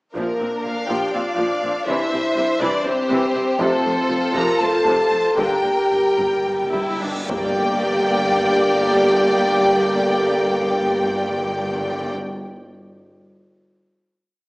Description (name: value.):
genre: cinematic, epic orchestral film score.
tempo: 207-244 BPM (eighths).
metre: 7/8.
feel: straight.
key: G dorian.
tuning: A4 = 440 Hz.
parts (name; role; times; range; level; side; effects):
rich studio violin section; melody; 0.1-12.1 s; Bb4 to Bb5; -25 LUFS; left 1 dB; none.
dark trombone section; sustained chords; 0.1-12.1 s; C3 to D4; -27 LUFS; right 1 dB; none.
taiko ensemble; drums; 0.1-8.4 s; none; -33 LUFS; equal; none.
rich symphonic viola section; accompaniment; 0.2-12.1 s; C3 to G4; -25 LUFS; equal; none.
dark French horn section; sustained chords; 0.2-12.1 s; Bb3 to Bb4; -21 LUFS; equal; none.
dark symphonic double bass section; bass; 0.2-12.1 s; F1 to C2; -33 LUFS; right 1 dB; none.
rich symphonic cello section; bass; 0.2-12.1 s; F2 to C3; -29 LUFS; equal; none.
warm symphonic violin section; second line; 0.7-12.1 s; G4 to G5; -24 LUFS; left 1 dB; none.
timpani; percussion; 5.4-12.2 s; G2; -33 LUFS; equal; none.
reverse cymbal and impact; sound effects; 6.5-9.3 s; none; -36 LUFS; equal; none.
room: moderate scoring stage reverb, RT60 1.7 s.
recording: small speaker sound.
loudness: -17 LUFS.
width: side -23 dB against mid.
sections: 0.2-7.3 theme; 7.3-11.3 final chord.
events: slowing down 2.7-7.3; timpani fill 5.4-7.3; reverse cymbal 6.5-7.3; impact 7.3-9.3.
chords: 0.2 Bbadd9; 1.9 Cadd9; 3.6 F; 5.4 Gm.